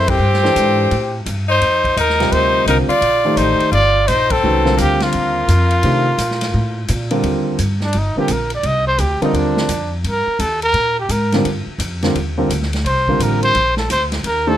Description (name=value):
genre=modal jazz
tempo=171 BPM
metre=4/4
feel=swing 64% on 8ths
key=C dorian from 7.2 s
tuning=A4 = 441 Hz
part: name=breathy trumpet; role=melody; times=0.0-14.6 s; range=D4 to Eb5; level=-17 LUFS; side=right 1 dB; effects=none
part: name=edgy tenor saxophone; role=second line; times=0.0-6.9 s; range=Bb3 to F4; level=-21 LUFS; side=left 5 dB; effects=none
part: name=warm grand piano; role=accompaniment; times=0.0-14.6 s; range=C3 to Eb5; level=-19 LUFS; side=right 1 dB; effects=none
part: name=upright bass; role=bass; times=0.0-14.6 s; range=G1 to C3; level=-19 LUFS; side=equal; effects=none
part: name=vintage drum kit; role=drums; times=0.1-14.3 s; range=hi-hat, kick drum, ride cymbal, snare drum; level=-26 LUFS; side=equal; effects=none
room=little or no reverb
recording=close, detailed microphones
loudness=-14 LUFS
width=side -11 dB against mid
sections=0.0-7.2 A section; 7.2-14.6 B section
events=band accent 0.0, 4.3; trumpet solo 7.2-14.6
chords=0.0 D9sus4; 1.6 F9sus4; 7.2 Cm9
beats=| 0.21 0.56 0.92 1.27 | 1.62 1.97 2.32 2.67 | 3.02 3.38 3.73 4.08 | 4.43 4.78 5.13 5.48 | 5.83 6.18 6.54 6.89 | 7.24 7.59 7.94 8.29 | 8.64 8.99 9.35 9.70 | 10.05 10.40 10.75 11.10 | 11.45 11.80 12.15 12.50 | 12.85 13.20 13.55 13.90 | 14.25